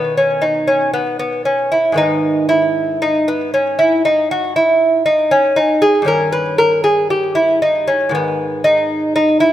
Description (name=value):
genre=classical, baroque-style dance for lute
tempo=59 BPM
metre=4/4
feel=rubato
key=unclear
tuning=A4 = 437 Hz
part: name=lute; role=solo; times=0.0-9.5 s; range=G2 to B4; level=-12 LUFS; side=equal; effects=slapback echo
room=light reverb, small room ambience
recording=rough home demo mix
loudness=-13 LUFS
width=side -12 dB against mid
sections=0.0-9.5 A section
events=none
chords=0.0 B; 2.0 G#m; 6.1 D#7/G; 8.1 G#5